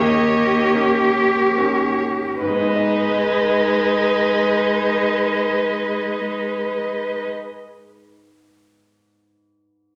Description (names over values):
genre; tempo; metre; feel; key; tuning
classical, slow romantic movement for piano quintet; 26 BPM (dotted quarters); 12/8; rubato; G# minor; A4 = 440 Hz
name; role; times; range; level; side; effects
rich violin; melody; 0.0-7.3 s; D#5; -29 LUFS; equal; none
rich violin; second line; 0.0-7.3 s; D#4 to C#5; -29 LUFS; equal; none
warm cello; second line; 0.0-7.2 s; G4 to B4; -22 LUFS; equal; none
bright baby grand piano; accompaniment; 0.0-10.0 s; D#2 to D#5; -29 LUFS; equal; none
warm viola; accompaniment; 0.0-7.3 s; G#3 to A#3; -25 LUFS; equal; none
room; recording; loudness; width
wet recital hall reverb, RT60 1.4 s; none; -19 LUFS; mono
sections
0.0-2.4 A section; 2.4-10.0 B section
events
slowing down 0.0-2.4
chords
0.0 D#7; 2.4 G#m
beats
| 2.41 4.79 7.12 9.41